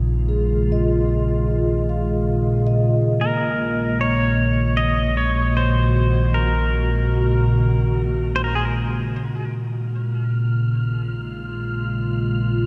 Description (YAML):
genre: ambient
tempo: 77 BPM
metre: 4/4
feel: straight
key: Bb minor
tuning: A4 = 440 Hz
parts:
  - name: glassy FM pad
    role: sustained chords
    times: 0.0-12.7 s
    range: Bb2 to Gb4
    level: -23 LUFS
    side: equal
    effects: ensemble chorus, built-in reverb
  - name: round analog bass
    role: bass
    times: 0.0-12.7 s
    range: Bb1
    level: -27 LUFS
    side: equal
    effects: none
  - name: vibraphone with soft mallets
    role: arpeggios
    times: 0.3-9.5 s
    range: Bb3 to F5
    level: -30 LUFS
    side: equal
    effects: shimmer reverb, tape echo
  - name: pedal steel guitar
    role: melody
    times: 3.2-8.7 s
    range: Ab4 to Eb5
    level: -27 LUFS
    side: equal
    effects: shimmer reverb, tape echo
  - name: wind-like tuned noise texture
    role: texture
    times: 9.9-12.7 s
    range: F6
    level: -37 LUFS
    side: equal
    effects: built-in reverb, shimmer reverb
room: moderate lush hall reverb, RT60 2.8 s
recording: cassette tape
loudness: -20 LUFS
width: mono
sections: 0.0-9.5 A section; 9.5-12.7 B section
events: fade-in on analog synth bass 9.5-12.7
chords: 0.0 Bbm7; 3.2 Ebm/Bb; 9.5 Bbm7